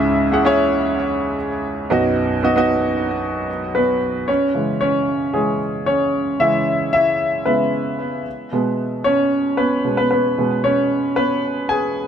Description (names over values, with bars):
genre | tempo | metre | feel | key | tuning
pop | 113 BPM | 4/4 | straight | unclear | A4 = 441 Hz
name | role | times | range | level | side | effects
clear concert grand piano | solo | 0.0-12.1 s | B1 to G#5 | -16 LUFS | equal | tape echo
room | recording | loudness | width
moderate plate reverb, RT60 3.2 s | echo-heavy mix | -16 LUFS | side -8 dB against mid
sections
0.0-4.3 A section; 4.3-12.1 B section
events
grand piano solo 4.3-12.1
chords
0.0 C#m; 1.9 B; 4.3 C#m; 8.3 G#madd11/B